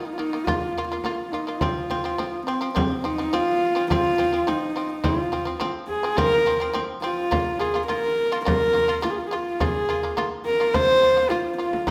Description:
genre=mongolian traditional, Mongolian folk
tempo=105 BPM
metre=4/4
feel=straight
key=F yu mode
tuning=A4 = 441 Hz
part: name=warm horsehead fiddle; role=melody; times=0.0-11.9 s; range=C4 to C5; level=-25 LUFS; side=equal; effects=none
part: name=shamisen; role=arpeggios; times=0.0-11.9 s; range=Eb3 to F4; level=-31 LUFS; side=equal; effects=none
part: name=frame drum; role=percussion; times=0.2-11.9 s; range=none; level=-31 LUFS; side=equal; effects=none
room=wet recital hall reverb, RT60 1.4 s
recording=none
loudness=-23 LUFS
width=mono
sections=0.0-2.8 A section; 2.8-11.9 B section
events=none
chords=0.5 Bb5; 1.6 F5; 7.3 Bb5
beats=| 0.47 1.04 1.62 2.19 | 2.76 3.33 3.90 4.47 | 5.04 5.62 6.19 6.76 | 7.33 7.90 8.47 9.04 | 9.61 10.17 10.74 11.31 | 11.88

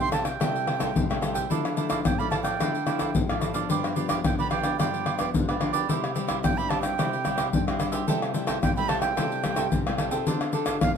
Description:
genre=samba and choro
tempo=110 BPM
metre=4/4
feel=straight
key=unclear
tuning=A4 = 440 Hz
part: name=breathy bright concert flute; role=melody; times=0.0-10.9 s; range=F5 to C6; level=-30 LUFS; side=right 7 dB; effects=none
part: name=cavaquinho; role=accompaniment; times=0.0-10.8 s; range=D4 to G5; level=-31 LUFS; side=right 11 dB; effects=none
part: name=nylon-string guitar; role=accompaniment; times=0.0-11.0 s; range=G2 to A4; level=-30 LUFS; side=left 4 dB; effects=none
part: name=egg shaker, pandeiro, tamborim and surdo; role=percussion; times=0.0-11.0 s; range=none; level=-26 LUFS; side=left 2 dB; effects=none
room=moderate studio reverb, RT60 0.5 s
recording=none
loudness=-23 LUFS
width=side -7 dB against mid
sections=0.0-11.0 A section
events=none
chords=0.0 Am7/C; 1.5 Dmadd9; 3.7 G7; 5.9 C; 8.1 Am7/C; 10.3 Dm7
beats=0.41 0.95 | 1.50 2.05 2.60 3.15 | 3.70 4.25 4.80 5.34 | 5.89 6.44 6.99 7.54 | 8.08 8.63 9.18 9.72 | 10.27 10.82

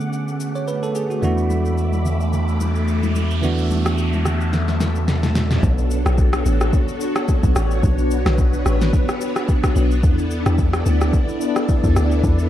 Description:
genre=amapiano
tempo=109 BPM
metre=4/4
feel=swing 55% on 16ths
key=B minor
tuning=A4 = 440 Hz
part: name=bell-like tine electric piano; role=accompaniment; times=0.0-5.7 s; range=D3 to C#5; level=-24 LUFS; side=right 4 dB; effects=phaser
part: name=string machine, violas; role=sustained chords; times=0.0-12.5 s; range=A3 to D6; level=-24 LUFS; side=left 1 dB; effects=ensemble chorus, sidechain pumping
part: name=smooth R&B drum kit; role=drums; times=0.0-12.5 s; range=kick drum, rim click, shaker, snare drum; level=-20 LUFS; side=equal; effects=none
part: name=punchy sub bass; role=bass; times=1.2-5.6 s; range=E2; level=-20 LUFS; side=equal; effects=none
part: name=congas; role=percussion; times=1.2-5.5 s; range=none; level=-29 LUFS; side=left 3 dB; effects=none
part: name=noise sweep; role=sound effects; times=1.7-5.6 s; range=none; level=-32 LUFS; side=right 2 dB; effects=none
part: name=deep log drum bass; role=bass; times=5.6-12.5 s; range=A1 to E2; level=-18 LUFS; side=equal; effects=none
room=digital ambience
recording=none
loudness=-16 LUFS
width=side -12 dB against mid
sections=0.0-5.6 A section; 5.6-12.5 B section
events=noise sweep 1.7-5.6; drum fill 4.5-5.6; drop 5.6-12.5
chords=0.0 Bm9; 1.2 E7sus4; 5.6 Bm9; 10.0 E7sus4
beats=0.13 0.68 | 1.23 1.78 2.33 2.88 | 3.43 3.98 4.53 5.08 | 5.63 6.18 6.73 7.28 | 7.83 8.38 8.93 9.48 | 10.03 10.59 11.13 11.69 | 12.24

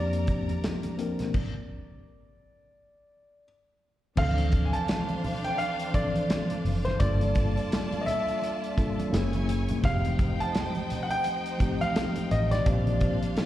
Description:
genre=lush 1970s-style soul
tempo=85 BPM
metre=4/4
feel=swing 58% on 16ths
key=D minor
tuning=A4 = 437 Hz
part: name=clear baby grand piano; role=melody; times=0.0-13.5 s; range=C5 to A5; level=-32 LUFS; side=equal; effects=slapback echo
part: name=clear studio string section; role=second line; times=0.0-13.5 s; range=D4 to Bb5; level=-38 LUFS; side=right 1 dB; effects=slapback echo
part: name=mellow tine electric piano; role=accompaniment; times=0.0-13.5 s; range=E3 to Bb4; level=-32 LUFS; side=left 2 dB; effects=medium stereo tremolo, slapback echo
part: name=vintage muted fingered electric bass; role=bass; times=0.0-13.2 s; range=F1 to F2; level=-27 LUFS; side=equal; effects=none
part: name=modern studio drum kit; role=drums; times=0.1-13.5 s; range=crash cymbal, hi-hat, kick drum, snare drum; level=-30 LUFS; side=equal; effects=none
part: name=congas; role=percussion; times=0.5-13.5 s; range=none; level=-38 LUFS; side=right 4 dB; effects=none
part: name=muted trombone section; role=stabs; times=12.7-13.2 s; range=F3 to D4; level=-35 LUFS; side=right 1 dB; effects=slapback echo
room=little or no reverb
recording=live gig heard through the venue's PA, recital hall reverb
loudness=-25 LUFS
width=side -13 dB against mid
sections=0.0-4.2 A section; 4.2-13.5 B section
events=stop 1.3-4.2; band accent 12.7-13.5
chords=0.0 C9sus4; 4.2 Dm7; 7.0 Gm9; 9.1 F#9; 9.8 F9; 12.7 Bb69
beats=0.64 | 1.35 2.06 2.76 3.47 | 4.18 4.88 5.59 6.30 | 7.00 7.71 8.42 9.12 | 9.83 10.54 11.24 11.95 | 12.66 13.36

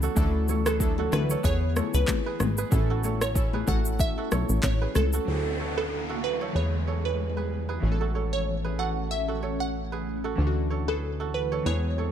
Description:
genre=afrobeats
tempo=94 BPM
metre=4/4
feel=swing 55% on 16ths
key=A major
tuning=A4 = 440 Hz
part: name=glassy digital keys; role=accompaniment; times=0.0-12.1 s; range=E3 to A4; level=-35 LUFS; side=equal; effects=chorus
part: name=ethereal airy pad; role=sustained chords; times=0.0-12.1 s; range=D3 to E4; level=-36 LUFS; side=left 2 dB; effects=ensemble chorus, built-in reverb
part: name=kora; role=riff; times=0.0-12.1 s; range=F#4 to C#5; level=-35 LUFS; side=right 9 dB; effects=tape echo
part: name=plucky analog bass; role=bass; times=0.0-12.1 s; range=G#1 to E2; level=-28 LUFS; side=equal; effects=none
part: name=afro-pop drum kit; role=drums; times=0.0-5.3 s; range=handclaps, kick drum, rim click, shaker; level=-28 LUFS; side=equal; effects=overdrive
part: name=congas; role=percussion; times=0.5-5.1 s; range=none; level=-35 LUFS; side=left 11 dB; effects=none
part: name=glassy wavetable pluck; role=melody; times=0.7-11.8 s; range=A4 to F#5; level=-32 LUFS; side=right 2 dB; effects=chorus, tape echo
part: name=downlifter and swell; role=sound effects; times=5.3-12.1 s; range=none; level=-38 LUFS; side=left 1 dB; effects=none
room=digital ambience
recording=none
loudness=-24 LUFS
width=side -9 dB against mid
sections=0.0-5.3 A section; 5.3-12.1 B section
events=none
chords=0.2 Dadd9; 1.4 E; 2.7 A; 5.3 Dadd9; 6.5 E; 7.8 A; 10.4 Dadd9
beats=| 0.17 0.81 1.44 2.08 | 2.72 3.36 4.00 4.63 | 5.27 5.91 6.55 7.19 | 7.83 8.46 9.10 9.74 | 10.38 11.02 11.66

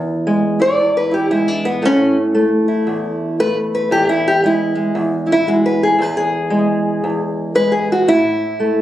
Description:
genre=acoustic country blues, solo or duo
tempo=115 BPM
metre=4/4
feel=swing 61% on 8ths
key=E mixolydian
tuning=A4 = 437 Hz
part: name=fingerpicked old ladder-braced acoustic guitar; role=solo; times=0.0-8.8 s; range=E2 to D5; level=-14 LUFS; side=equal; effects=none
room=moderate booth ambience, RT60 0.2 s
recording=recorded on a phone in the room, club reverb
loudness=-14 LUFS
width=side -13 dB against mid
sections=0.0-8.8 A section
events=steel-string acoustic guitar solo 0.0-8.8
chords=0.0 E; 1.8 A5; 3.9 E; 8.1 A5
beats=0.27 0.79 1.31 | 1.83 2.35 2.87 3.39 | 3.92 4.44 4.96 5.48 | 6.00 6.52 7.04 7.56 | 8.08 8.60

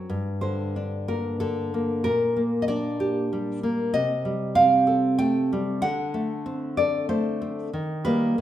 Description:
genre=romantic piece for solo classical guitar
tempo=94 BPM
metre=3/4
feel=rubato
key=G minor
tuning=A4 = 442 Hz
part: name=nylon-string guitar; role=solo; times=0.0-8.4 s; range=G2 to G5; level=-22 LUFS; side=equal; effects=none
room=moderate recital hall reverb, RT60 1.3 s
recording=minimal, uncompressed stereo recording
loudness=-22 LUFS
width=side -12 dB against mid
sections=0.0-8.4 A section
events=none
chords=0.1 Gm; 2.1 Gm/Bb; 3.9 Am7b5/C; 5.8 D7; 7.7 Eb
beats=| 0.09 0.76 1.41 | 2.06 2.68 3.31 | 3.94 4.56 5.19 | 5.84 6.47 7.11 | 7.74 8.39

